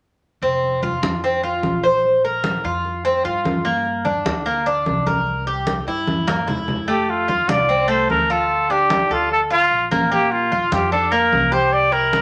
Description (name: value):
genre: latin, Cuban son and guajira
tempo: 149 BPM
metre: 4/4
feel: straight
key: F major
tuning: A4 = 440 Hz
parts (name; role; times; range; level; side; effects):
- Cuban tres; arpeggios; 0.4-12.2 s; A3 to C5; -22 LUFS; equal; none
- upright bass; bass; 0.4-12.2 s; F1 to G2; -32 LUFS; equal; none
- congas; percussion; 0.4-12.2 s; none; -27 LUFS; equal; none
- breathy trumpet; melody; 6.9-12.2 s; F4 to D5; -20 LUFS; equal; none
room: wet studio reverb, RT60 0.8 s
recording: none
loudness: -19 LUFS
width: mono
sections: 0.4-6.9 A section; 6.9-12.2 B section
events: drum fill 6.1-6.9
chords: 0.4 F5; 2.0 Bbsus2; 3.7 Gm; 5.3 C7; 6.9 F; 8.5 Dm; 10.1 Bb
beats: | 0.42 0.83 1.23 1.64 | 2.04 2.44 2.85 3.25 | 3.65 4.06 4.46 4.87 | 5.27 5.67 6.08 6.48 | 6.88 7.29 7.69 8.09 | 8.50 8.90 9.30 9.71 | 10.11 10.52 10.92 11.32 | 11.73 12.13